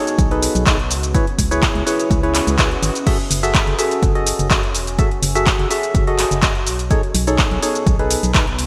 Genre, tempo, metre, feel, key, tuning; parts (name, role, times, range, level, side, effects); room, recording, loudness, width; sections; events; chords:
piano house; 125 BPM; 4/4; straight; F# dorian; A4 = 441 Hz
percussive organ stab; riff; 0.0-8.5 s; D#4 to E5; -23 LUFS; equal; chorus, sidechain pumping, digital delay
deep dark ambient pad; texture; 0.0-8.7 s; B3 to D#6; -32 LUFS; equal; chorus, built-in reverb, sidechain pumping
punchy analog drum machine; drums; 0.1-8.7 s; crash cymbal, handclaps, hi-hat, shaker; -23 LUFS; equal; gated reverb
organ-like FM bass; bass; 0.2-8.7 s; E1 to C#2; -24 LUFS; equal; sidechain pumping
electronic kick drum; drums; 0.2-8.4 s; -20 LUFS; equal
swell; sound effects; 2.4-3.1 s; -36 LUFS; equal
moderate lush hall reverb, RT60 2.3 s; bright 1980s-style digital production; -17 LUFS; mono
0.0-8.7 A section
swell 2.4-3.1
0.0 B13; 0.9 C#m7; 3.1 F#m9; 6.9 B13